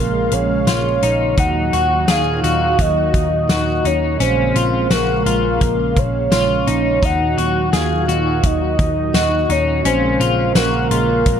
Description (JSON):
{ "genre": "dream pop", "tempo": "85 BPM", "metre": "4/4", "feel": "straight", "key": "Eb dorian", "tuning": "A4 = 441 Hz", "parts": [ { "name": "soft octave-layered synth lead", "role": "melody", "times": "0.0-11.4 s", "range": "Bb4 to Gb5", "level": "-19 LUFS", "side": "equal", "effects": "chorus, phaser, digital delay" }, { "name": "warm analog pad", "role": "sustained chords", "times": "0.0-11.4 s", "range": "Bb2 to F5", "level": "-23 LUFS", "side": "right 2 dB", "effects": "chorus" }, { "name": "electric guitar at the edge of break-up", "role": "arpeggios", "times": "0.0-11.4 s", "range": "Db4 to Ab4", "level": "-22 LUFS", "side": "left 4 dB", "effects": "analog chorus, digital delay" }, { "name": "vintage muted picked electric bass", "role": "bass", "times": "0.0-11.4 s", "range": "Bb1 to Eb2", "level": "-21 LUFS", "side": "equal", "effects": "none" }, { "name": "loose indie drum kit", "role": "drums", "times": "0.3-11.4 s", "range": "hi-hat, kick drum, snare drum, tambourine", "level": "-20 LUFS", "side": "equal", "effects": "none" } ], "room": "moderate plate reverb, RT60 2.4 s", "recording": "none", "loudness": "-14 LUFS", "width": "side -8 dB against mid", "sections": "0.0-11.4 A section", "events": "none", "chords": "0.0 Bbm7; 1.4 Ebm; 4.2 Bbm7; 7.0 Ebm; 9.8 Bbm7" }